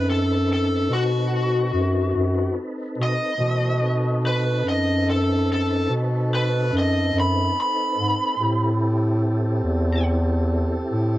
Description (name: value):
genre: blues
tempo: 48 BPM (dotted quarters)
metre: 12/8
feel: straight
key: unclear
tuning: A4 = 440 Hz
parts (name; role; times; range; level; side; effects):
- lead guitar through a small cranked amp; melody; 0.0-10.0 s; F#4 to B5; -24 LUFS; left 1 dB; overdrive
- tonewheel organ; sustained chords; 0.0-11.2 s; E3 to D#5; -30 LUFS; equal; slow rotary speaker, chorus vibrato, plate reverb
- mellow bass clarinet; bass; 0.0-11.2 s; E2 to B2; -21 LUFS; equal; none
- mellow horn section; sustained chords; 3.4-11.2 s; C4 to A4; -34 LUFS; right 1 dB; plate reverb
room: moderate club reverb, RT60 0.8 s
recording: dark, warm production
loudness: -19 LUFS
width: side -15 dB against mid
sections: 0.0-11.2 A section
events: lead electric guitar solo 0.0-11.2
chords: 0.0 B7b9; 8.4 Am7